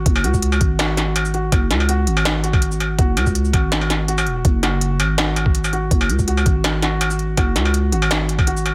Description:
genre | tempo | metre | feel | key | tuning
half-time drum and bass | 164 BPM | 4/4 | half-time | unclear | A4 = 440 Hz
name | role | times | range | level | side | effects
felt-muted upright piano | arpeggios | 0.0-8.7 s | F#4 | -28 LUFS | equal | digital delay
growling 808-style bass | bass | 0.0-8.7 s | E1 to C#2 | -22 LUFS | equal | none
electronic kick drum | drums | 0.1-8.5 s | none | -20 LUFS | equal | overdrive
industrial drum kit | drums | 0.1-8.7 s | hi-hat, shaker, snare drum, struck metal | -24 LUFS | equal | none
room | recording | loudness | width
digital ambience | none | -18 LUFS | mono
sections
0.0-8.7 A section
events
none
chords
0.0 F#5

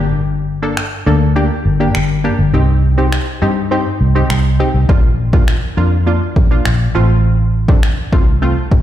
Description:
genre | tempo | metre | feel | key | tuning
dance-pop | 102 BPM | 4/4 | straight | Bb major | A4 = 441 Hz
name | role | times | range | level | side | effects
punchy chord stab | accompaniment | 0.0-8.7 s | A3 to A4 | -19 LUFS | equal | chorus, sidechain pumping
vintage muted fingered electric bass | bass | 0.0-8.8 s | G1 to G2 | -13 LUFS | equal | sidechain pumping
deep house drum kit | drums | 0.8-8.8 s | finger snaps, kick drum | -13 LUFS | equal | none
room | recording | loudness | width
light reverb, digital ambience | played on a big sound system in a bare room, large studio reverb | -11 LUFS | side -12 dB against mid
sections
0.0-8.8 A section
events
none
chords
0.0 Gm; 2.5 Cm; 4.9 Bb; 6.9 F/A

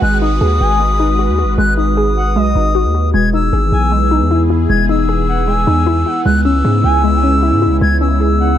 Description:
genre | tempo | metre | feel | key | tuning
hip hop | 154 BPM | 4/4 | half-time | G# minor | A4 = 439 Hz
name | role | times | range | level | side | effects
reedy silver concert flute | melody | 0.0-8.6 s | D#6 to G#6 | -18 LUFS | left 3 dB | tape echo
warbly dusty pluck | accompaniment | 0.0-8.6 s | G#3 to G#4 | -18 LUFS | left 2 dB | chorus
sweeping resonant pad | sustained chords | 0.0-8.6 s | C#3 to B4 | -20 LUFS | right 1 dB | chorus
long sustained 808-style bass | bass | 0.0-8.6 s | D#1 to G#2 | -15 LUFS | equal | none
gliding portamento lead | second line | 0.6-8.6 s | D#5 to G#5 | -24 LUFS | right 1 dB | chorus, phaser, tape echo
room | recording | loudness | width
little or no reverb | none | -11 LUFS | side -10 dB against mid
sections
0.0-8.6 A section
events
none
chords
0.0 G#m7; 3.1 Emaj7; 6.3 C#m7

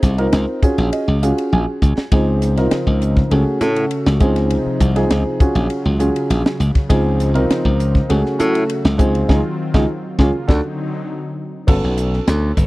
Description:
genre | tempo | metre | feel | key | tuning
electric jazz fusion | 100 BPM | 4/4 | straight | unclear | A4 = 442 Hz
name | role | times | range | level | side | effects
dark baby grand piano | accompaniment | 0.0-12.7 s | A3 to Ab5 | -20 LUFS | right 1 dB | none
glassy slap bass | bass | 0.0-12.7 s | G1 to A2 | -17 LUFS | equal | none
crisp fusion drum kit | drums | 0.0-12.7 s | crash cymbal, hi-hat, kick drum, ride cymbal, snare drum, toms | -17 LUFS | equal | none
warm analog pad | sustained chords | 2.1-11.7 s | C3 to Gb4 | -26 LUFS | left 1 dB | lush chorus
room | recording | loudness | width
little or no reverb | dry, close 1970s-style studio recording | -14 LUFS | side -19 dB against mid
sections
0.0-11.7 A section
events
grand piano fill 0.3-2.1; drum fill 1.5-2.1, 11.1-11.7; band accent 9.3-11.7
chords
0.0 Fm7; 0.6 Gbmaj13/Bb; 2.1 Dbmaj9; 3.3 Gbmadd9/Db; 4.2 Fm7/Db; 5.4 Gbmaj9/Bb; 6.9 Dbmaj9; 8.1 Gbmadd9/Db; 9.0 Fm7/Db; 10.2 Db6; 10.5 D7b9; 11.7 Gmaj9#11

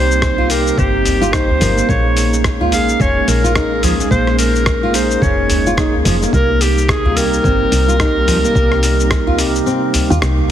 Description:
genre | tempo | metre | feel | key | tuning
organic downtempo | 108 BPM | 4/4 | swing 59% on 16ths | unclear | A4 = 440 Hz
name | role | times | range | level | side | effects
clear clarinet | melody | 0.0-10.2 s | G4 to F5 | -18 LUFS | equal | tape echo
mellow tine electric piano | accompaniment | 0.0-10.5 s | Bb3 to Bb4 | -21 LUFS | right 2 dB | medium stereo tremolo, sidechain pumping, tape echo
airy breathy pad | sustained chords | 0.0-10.5 s | C3 to Eb4 | -24 LUFS | left 1 dB | chorus, sidechain pumping
woody FM bass | bass | 0.0-10.5 s | F1 to Eb2 | -18 LUFS | equal | sidechain pumping
dusty soul sampler-style drum kit | drums | 0.1-10.4 s | hi-hat, rim click, shaker | -21 LUFS | left 1 dB | small room ambience
electronic kick drum | drums | 0.2-9.2 s | none | -19 LUFS | equal | small room ambience
nylon-string guitar | arpeggios | 0.4-10.4 s | F3 to F4 | -21 LUFS | equal | tape echo
udu | percussion | 1.1-10.5 s | none | -21 LUFS | equal | none
room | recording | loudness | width
light reverb | heavily compressed radio sound | -12 LUFS | side -10 dB against mid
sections
0.0-10.5 A section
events
kick drops out 9.7-10.5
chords
0.0 Cm7; 1.9 Bbm7; 6.3 Cm7

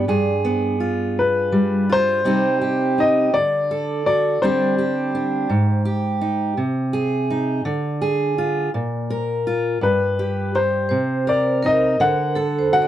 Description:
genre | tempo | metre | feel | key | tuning
acoustic folk-pop ballad | 55 BPM (dotted quarters) | 6/8 | straight | C minor | A4 = 440 Hz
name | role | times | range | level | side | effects
fingerpicked steel-string acoustic guitar | accompaniment | 0.0-12.9 s | G2 to Bb4 | -20 LUFS | right 1 dB | none
vibraphone with medium hard mallets | arpeggios | 0.0-0.4, 10.9-12.9 s | A4 to D5 | -24 LUFS | right 3 dB | none
warm grand piano | melody | 1.2-5.8, 9.8-12.9 s | B4 to F#5 | -20 LUFS | left 2 dB | none
room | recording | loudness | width
light reverb | dry, close 1970s-style studio recording | -18 LUFS | side -11 dB against mid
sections
0.1-2.2 A section; 2.2-12.9 B section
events
none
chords
0.1 G7b9; 2.2 Cm; 3.3 D; 4.4 Gsus4/D; 5.5 Ab5; 6.6 Ab/C; 7.6 Ddim; 8.7 Bb5; 9.8 N.C.; 10.9 Cm7; 12.0 D7

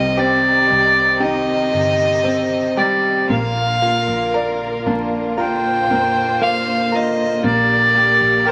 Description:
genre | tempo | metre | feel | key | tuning
pop ballad | 58 BPM | 4/4 | straight | unclear | A4 = 440 Hz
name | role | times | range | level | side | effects
warm violin | melody | 0.0-8.5 s | C5 to G5 | -18 LUFS | equal | none
warm grand piano | accompaniment | 0.0-8.5 s | C3 to F5 | -25 LUFS | equal | none
dark studio string section | sustained chords | 0.0-8.5 s | D3 to C5 | -27 LUFS | equal | none
direct-recorded clean electric guitar | arpeggios | 0.0-8.5 s | Bb2 to Bb4 | -26 LUFS | equal | none
vintage muted fingered electric bass | bass | 0.0-8.5 s | G1 to F2 | -31 LUFS | equal | none
room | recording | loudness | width
wet studio reverb, RT60 0.6 s | vinyl crackle | -17 LUFS | mono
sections
0.0-8.5 A section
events
none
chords
0.0 Cmadd9; 3.3 Bb; 7.4 Gm/Bb

